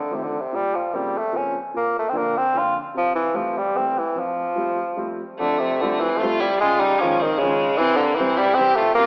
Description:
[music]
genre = musette waltz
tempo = 149 BPM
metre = 3/4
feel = rubato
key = F major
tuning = A4 = 440 Hz
[part]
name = clear bassoon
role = melody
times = 0.0-9.1 s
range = C3 to F4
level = -22 LUFS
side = equal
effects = none
[part]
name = warm upright piano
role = accompaniment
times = 0.1-9.1 s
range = F2 to D4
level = -31 LUFS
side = equal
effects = none
[part]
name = clear violin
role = second line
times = 5.4-9.1 s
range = Ab3 to G4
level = -28 LUFS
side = equal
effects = none
[sound]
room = wet scoring stage reverb, RT60 1.8 s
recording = recorded in a church or concert hall, AM radio sound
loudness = -22 LUFS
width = mono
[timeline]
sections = 0.0-5.4 A section; 5.4-9.1 A section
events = none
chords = 0.0 F7/C; 0.5 Bbmadd9; 1.8 Bb; 3.0 C6; 4.2 Fadd9; 6.6 Dbadd9; 7.8 C

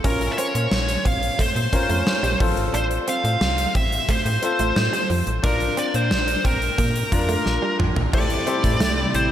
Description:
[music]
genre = 1980s-style pop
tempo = 89 BPM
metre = 4/4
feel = straight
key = unclear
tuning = A4 = 440 Hz
[part]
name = clear concert grand piano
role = accompaniment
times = 0.0-9.3 s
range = C4 to D5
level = -27 LUFS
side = left 3 dB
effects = slapback echo
[part]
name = direct-recorded clean electric guitar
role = riff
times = 0.0-9.0 s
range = F3 to D4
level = -30 LUFS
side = right 5 dB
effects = lush chorus, slapback echo
[part]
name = slap-like FM bass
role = bass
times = 0.0-9.3 s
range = Ab1 to Bb2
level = -25 LUFS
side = equal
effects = none
[part]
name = gated 80s drum kit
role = drums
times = 0.0-9.3 s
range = crash cymbal, hi-hat, kick drum, snare drum, toms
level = -24 LUFS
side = equal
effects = none
[part]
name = high-gain lead guitar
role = melody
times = 0.1-9.3 s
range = Bb4 to F5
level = -24 LUFS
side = equal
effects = distortion, slapback echo
[part]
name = brassy analog pad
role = sustained chords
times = 8.1-9.3 s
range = C3 to E4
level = -28 LUFS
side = equal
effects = chorus
[sound]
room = moderate lush hall reverb, RT60 3.4 s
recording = big arena sound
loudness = -18 LUFS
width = side -11 dB against mid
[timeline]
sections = 0.0-8.1 A section; 8.1-9.3 B section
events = drum fill 7.5-8.1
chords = 0.0 Bbmadd9; 2.4 F; 5.4 Bb; 8.1 Am7

